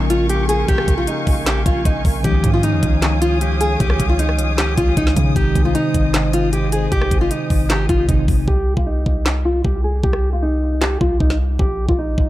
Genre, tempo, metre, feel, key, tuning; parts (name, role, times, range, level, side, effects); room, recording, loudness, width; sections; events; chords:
hip hop, trap; 154 BPM; 4/4; half-time; C phrygian; A4 = 437 Hz
nylon-string guitar; melody; 0.0-12.3 s; Eb4 to Ab4; -21 LUFS; equal; low-pass filter, dub echo
mellow tine electric piano; accompaniment; 0.0-8.5 s; C3 to Eb4; -23 LUFS; left 1 dB; medium stereo tremolo, low-pass filter, dub echo
dark studio string section; sustained chords; 0.0-8.4 s; Bb4 to Eb6; -27 LUFS; equal
long sustained 808-style bass; bass; 0.0-12.3 s; Ab1 to Db3; -20 LUFS; equal
trap drum kit; drums; 0.1-12.3 s; handclaps, hi-hat, kick drum, rim click, snare drum; -19 LUFS; equal
digital ambience; echo-heavy mix; -15 LUFS; side -15 dB against mid
0.0-8.5 A section; 8.5-12.3 B section
hi-hats muted 8.5-12.3
0.0 Bbm7; 2.2 Dbadd9; 5.4 Ab; 8.5 Cm; 11.6 F9sus4/Bb (rootless)